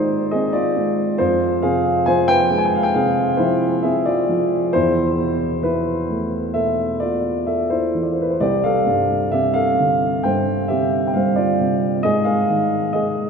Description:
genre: classical, lyrical solo piano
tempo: 67 BPM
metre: 4/4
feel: rubato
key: unclear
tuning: A4 = 443 Hz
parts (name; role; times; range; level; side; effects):
- dark baby grand piano; solo; 0.0-13.3 s; C2 to Ab5; -16 LUFS; equal; none
room: wet cathedral reverb, RT60 4.7 s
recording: in a vast, echoing space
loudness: -16 LUFS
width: side -6 dB against mid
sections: 0.0-13.3 A section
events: none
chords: 0.0 G#; 1.2 Fm; 4.7 Esus4; 8.4 Csus2; 12.0 G#5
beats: 0.33 | 1.20 2.07 2.95 3.84 | 4.74 5.64 6.55 7.47 | 8.41 9.32 10.24 11.15 | 12.04 12.94

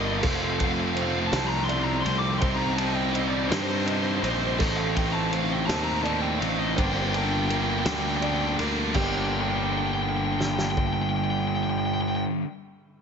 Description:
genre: post-rock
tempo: 55 BPM (dotted quarters)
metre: 6/8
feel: straight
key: G minor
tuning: A4 = 440 Hz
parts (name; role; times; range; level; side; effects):
- crunchy overdriven guitar; melody; 0.0-12.2 s; C5 to D6; -31 LUFS; right 1 dB; slapback echo
- pedal steel guitar; sustained chords; 0.0-12.2 s; G3 to Bb5; -40 LUFS; equal; none
- felt-muted upright piano; arpeggios; 0.0-9.3 s; G4 to Eb5; -36 LUFS; right 6 dB; slapback echo
- biting overdriven guitar; riff; 0.0-12.5 s; F2 to Eb4; -30 LUFS; right 14 dB; none
- distorted electric guitar; riff; 0.0-12.5 s; F2 to G4; -30 LUFS; left 13 dB; distortion
- fuzz picked electric bass; bass; 0.0-12.2 s; F1 to G2; -29 LUFS; equal; overdrive
- loose indie drum kit; drums; 0.2-10.9 s; crash cymbal, kick drum, ride cymbal, snare drum; -31 LUFS; equal; none
room: light reverb, studio ambience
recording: nothing above 7.7 kHz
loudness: -23 LUFS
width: side -6 dB against mid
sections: 0.0-9.0 A section; 9.0-13.0 B section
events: none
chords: 0.2 F; 2.4 Cm; 4.6 Adim; 6.8 Gm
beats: | 0.24 1.33 | 2.42 3.51 | 4.60 5.69 | 6.78 7.87 | 8.96 10.05 | 11.13 12.22

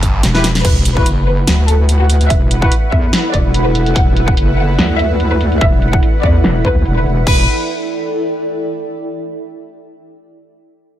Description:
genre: heavy wobble dubstep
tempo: 145 BPM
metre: 4/4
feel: swing 55% on 16ths, half-time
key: E minor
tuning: A4 = 440 Hz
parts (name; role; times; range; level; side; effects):
- dubstep drum kit; drums; 0.0-7.4 s; crash cymbal, hi-hat, snare drum; -18 LUFS; equal; low-pass filter on hats, low-pass filter on snare, low-pass filter on cymbals
- electronic kick drum; drums; 0.0-7.4 s; none; -14 LUFS; equal; none
- wobble bass; bass; 0.2-7.5 s; E1 to E2; -14 LUFS; equal; chorus, overdrive
- clear brass ensemble; stabs; 0.3-2.7 s; E4 to B4; -21 LUFS; left 2 dB; tape echo
- warm symphonic violin section; melody; 0.6-7.4 s; F#4 to F#5; -21 LUFS; left 1 dB; tape echo
- lush unison pad; sustained chords; 0.9-7.5 s; E4 to F#5; -24 LUFS; equal; chorus, phaser, sidechain pumping
- sub drop; sound effects; 0.6-2.3 s; none; -22 LUFS; equal; none
- granular cloud pad; texture; 1.9-8.9 s; E4 to G5; -22 LUFS; right 1 dB; built-in reverb, sidechain pumping
room: little or no reverb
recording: none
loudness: -11 LUFS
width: side -12 dB against mid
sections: 0.6-7.3 A section; 7.3-8.9 B section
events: drum fill 0.2-0.6; band accent 0.5; impact 0.6-2.3; filter sweep on drum 0.6-7.3; filter sweep on wobble bass 0.6-7.3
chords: 0.0 Em; 0.6 Esus2; 7.3 Em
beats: 0.23 | 0.65 1.06 1.48 1.89 | 2.30 2.72 3.13 3.54 | 3.96 4.37 4.79 5.20 | 5.61 6.03 6.44 6.85 | 7.27 7.68 8.10 8.51

